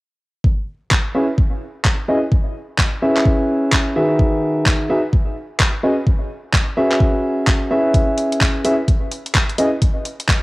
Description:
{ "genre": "UK garage, two-step garage", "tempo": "128 BPM", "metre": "4/4", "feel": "swing 62% on 16ths", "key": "C# minor", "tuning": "A4 = 439 Hz", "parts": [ { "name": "electronic kick drum", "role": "drums", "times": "0.4-10.4 s", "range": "none", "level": "-17 LUFS", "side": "equal", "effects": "small room reverb, cassette tape" }, { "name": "garage drum kit", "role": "drums", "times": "0.9-10.4 s", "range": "handclaps, hi-hat", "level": "-21 LUFS", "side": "equal", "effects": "small room reverb, cassette tape" }, { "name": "dark concert grand piano", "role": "stabs", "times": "1.1-9.7 s", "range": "D#3 to E5", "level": "-18 LUFS", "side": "equal", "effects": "low-pass filter, cassette tape, tape echo" } ], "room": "light reverb, digital ambience", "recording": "home recording on cassette", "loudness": "-15 LUFS", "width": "side -22 dB against mid", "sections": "0.4-10.4 A section", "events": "none", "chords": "0.4 C#m7; 4.2 Emaj9; 5.8 F#9sus4; 7.9 C#m7" }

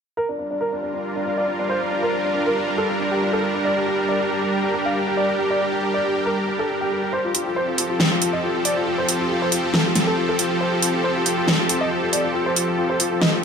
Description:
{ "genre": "heavy wobble dubstep", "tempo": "138 BPM", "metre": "4/4", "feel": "swing 53% on 16ths, half-time", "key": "G minor", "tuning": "A4 = 439 Hz", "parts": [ { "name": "dark baby grand piano", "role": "melody", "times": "0.2-13.4 s", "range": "D4 to F5", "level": "-23 LUFS", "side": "left 1 dB", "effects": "tape echo" }, { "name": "supersaw pad", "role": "sustained chords", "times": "0.5-13.4 s", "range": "F3 to Bb4", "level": "-22 LUFS", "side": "right 1 dB", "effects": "none" }, { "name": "dubstep drum kit", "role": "drums", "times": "7.3-13.3 s", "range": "hi-hat, snare drum", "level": "-20 LUFS", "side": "equal", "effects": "overdrive" } ], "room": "moderate lush hall reverb, RT60 2.4 s", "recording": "none", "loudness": "-19 LUFS", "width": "side -6 dB against mid", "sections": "0.2-13.4 A section", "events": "none", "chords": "0.2 Gm7; 7.1 Fadd9" }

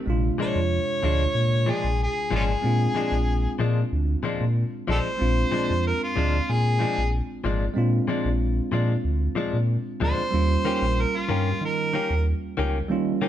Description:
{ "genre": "blues", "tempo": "94 BPM", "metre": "4/4", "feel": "straight", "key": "Bb mixolydian", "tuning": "A4 = 438 Hz", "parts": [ { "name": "bell-like tine electric piano", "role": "accompaniment", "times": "0.0-13.3 s", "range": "C3 to F4", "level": "-29 LUFS", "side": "right 2 dB", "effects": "none" }, { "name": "sub bass with octave", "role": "bass", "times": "0.1-13.1 s", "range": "Ab1 to Eb3", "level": "-24 LUFS", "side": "equal", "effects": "none" }, { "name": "clear harmonica", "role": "melody", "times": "0.4-12.3 s", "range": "Db4 to Db5", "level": "-26 LUFS", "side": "equal", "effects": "overdrive" }, { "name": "direct-recorded clean electric guitar", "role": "stabs", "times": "0.4-13.3 s", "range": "Bb2 to G4", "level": "-29 LUFS", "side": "left 4 dB", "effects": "none" } ], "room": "light reverb", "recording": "band playing live in one room, nothing above 11.0 kHz", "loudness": "-22 LUFS", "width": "side -11 dB against mid", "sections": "0.1-13.3 A section", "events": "harmonica solo 0.1-13.3", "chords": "0.1 Bb7; 10.3 Eb7" }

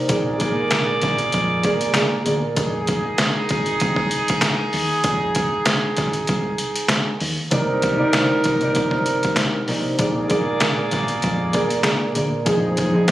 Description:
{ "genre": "hip hop, boom-bap hip-hop", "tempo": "97 BPM", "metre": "4/4", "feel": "swing 55% on 16ths", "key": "F dorian", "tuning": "A4 = 442 Hz", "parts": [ { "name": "concert harp", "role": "accompaniment", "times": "0.0-2.6, 7.5-13.1 s", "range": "Bb2 to D5", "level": "-22 LUFS", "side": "equal", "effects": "none" }, { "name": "clear trumpet section", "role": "stabs", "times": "0.1-13.1 s", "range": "G3 to D5", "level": "-23 LUFS", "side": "right 1 dB", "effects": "tape echo" }, { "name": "deep dub fingered electric bass", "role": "bass", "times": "0.1-12.9 s", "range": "F1 to F2", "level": "-27 LUFS", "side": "equal", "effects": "none" }, { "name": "trip hop sampler-style drum kit", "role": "drums", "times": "0.1-13.1 s", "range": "hi-hat, kick drum, snare drum", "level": "-22 LUFS", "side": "equal", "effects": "none" } ], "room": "light reverb", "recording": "recorded on a phone in the room, studio reverb, vinyl crackle, compression", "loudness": "-18 LUFS", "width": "side -14 dB against mid", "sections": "0.0-12.5 A section", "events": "none", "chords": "0.1 Bb7; 2.6 Fm7; 7.5 Cm9; 10.0 Bb7; 12.5 Fm7" }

